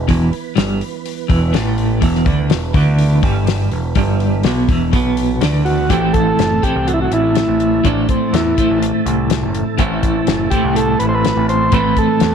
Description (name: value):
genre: psychedelic rock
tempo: 124 BPM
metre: 4/4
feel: straight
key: A minor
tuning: A4 = 440 Hz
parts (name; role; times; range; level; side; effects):
- tonewheel organ; sustained chords; 0.0-12.3 s; E3 to A5; -28 LUFS; right 12 dB; chorus vibrato, slow rotary speaker
- twelve-string electric guitar; riff; 0.0-12.3 s; E2 to E4; -16 LUFS; right 1 dB; tremolo, double-tracked left and right
- growling picked electric bass; bass; 0.0-12.3 s; E1 to E2; -20 LUFS; equal; overdrive
- damped 70s drum kit; drums; 0.1-12.3 s; hi-hat, kick drum, snare drum; -19 LUFS; left 3 dB; none
- combo organ; melody; 5.6-12.3 s; C4 to C5; -17 LUFS; equal; slapback echo
room: studio ambience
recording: 1960s-style stereo, faint mains hum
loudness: -13 LUFS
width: side -7 dB against mid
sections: 0.0-5.9 A section; 5.9-12.3 B section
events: none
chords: 0.0 E5; 5.9 Am